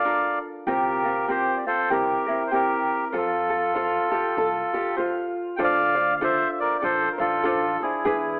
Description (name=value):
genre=Hawaiian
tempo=97 BPM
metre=4/4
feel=swing 59% on 8ths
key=F major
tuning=A4 = 442 Hz
part: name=melodica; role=melody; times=0.0-8.4 s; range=E4 to G5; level=-26 LUFS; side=equal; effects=none
part: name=ukulele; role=accompaniment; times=0.0-8.4 s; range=C4 to C5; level=-29 LUFS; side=equal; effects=none
part: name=upright bass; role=bass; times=0.7-8.4 s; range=A1 to F2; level=-44 LUFS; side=equal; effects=none
part: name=fingerpicked acoustic archtop guitar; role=second line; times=3.8-5.6 s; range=F4 to A4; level=-31 LUFS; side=equal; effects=none
room=moderate recital hall reverb, RT60 1.3 s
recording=telephone sound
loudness=-24 LUFS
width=mono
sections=0.0-5.6 A section; 5.6-8.4 B section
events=none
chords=0.0 Bbmaj7; 0.7 C7sus4; 1.9 C7; 3.1 F; 5.6 Dm7